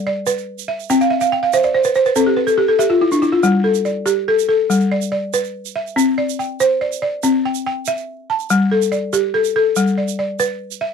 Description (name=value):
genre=west african traditional, West African string and xylophone music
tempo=95 BPM (dotted quarters)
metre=12/8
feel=straight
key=G mixolydian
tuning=A4 = 441 Hz
part: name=balafon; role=arpeggios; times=0.0-10.9 s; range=G3 to A5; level=-15 LUFS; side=left 1 dB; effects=none
part: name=egg shaker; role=percussion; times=0.3-10.8 s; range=none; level=-28 LUFS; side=right 30 dB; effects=none
room=light reverb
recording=dry, close 1970s-style studio recording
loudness=-15 LUFS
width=side -6 dB against mid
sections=0.0-10.9 A section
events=balafon fill 0.9-3.4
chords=0.0 G (rootless); 0.9 C; 3.4 G; 6.0 C; 8.5 G